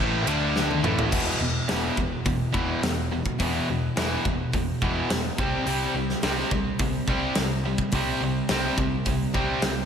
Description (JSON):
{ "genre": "hard rock", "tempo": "106 BPM", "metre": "4/4", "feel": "straight", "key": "E minor", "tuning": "A4 = 441 Hz", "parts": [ { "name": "cranked stack guitar", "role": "riff", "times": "0.0-9.9 s", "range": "E2 to D4", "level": "-28 LUFS", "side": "left 7 dB", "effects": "overdrive" }, { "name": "tight distorted guitar", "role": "riff", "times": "0.0-9.9 s", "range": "E2 to D4", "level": "-28 LUFS", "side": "right 7 dB", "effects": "distortion, slapback echo" }, { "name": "hollow-body short-scale picked electric bass", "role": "bass", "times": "0.0-9.9 s", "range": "E1 to D2", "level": "-31 LUFS", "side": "equal", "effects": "none" }, { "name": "big rock drum kit", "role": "drums", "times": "0.3-9.8 s", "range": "crash cymbal, hi-hat, kick drum, ride cymbal, snare drum, toms", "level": "-27 LUFS", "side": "equal", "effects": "none" } ], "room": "moderate lush hall reverb, RT60 1.8 s", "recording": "big arena sound, lossy compression artefacts", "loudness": "-23 LUFS", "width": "side -8 dB against mid", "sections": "0.0-1.1 A section; 1.1-9.9 B section", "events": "drum fill 0.6-1.1", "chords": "0.3 D5; 0.8 A5; 1.1 E5; 5.4 C5", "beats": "0.56 | 1.13 1.69 2.26 2.83 | 3.40 3.97 4.53 5.10 | 5.67 6.24 6.80 7.37 | 7.94 8.50 9.07 9.64" }